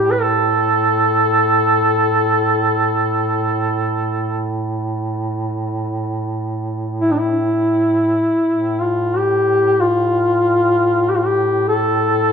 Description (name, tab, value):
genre	caucasian folk, Caucasian lament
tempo	free time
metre	none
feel	none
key	unclear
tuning	A4 = 439 Hz
part	mellow duduk	melody	0.0-12.3 s	D4 to B4	-15 LUFS	equal	none
part	mellow duduk	drone	0.0-12.3 s	A2	-22 LUFS	right 2 dB	none
room	wet recital hall reverb, RT60 1.5 s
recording	minimal, uncompressed stereo recording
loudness	-15 LUFS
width	side -6 dB against mid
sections	0.0-12.3 A section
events	none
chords	none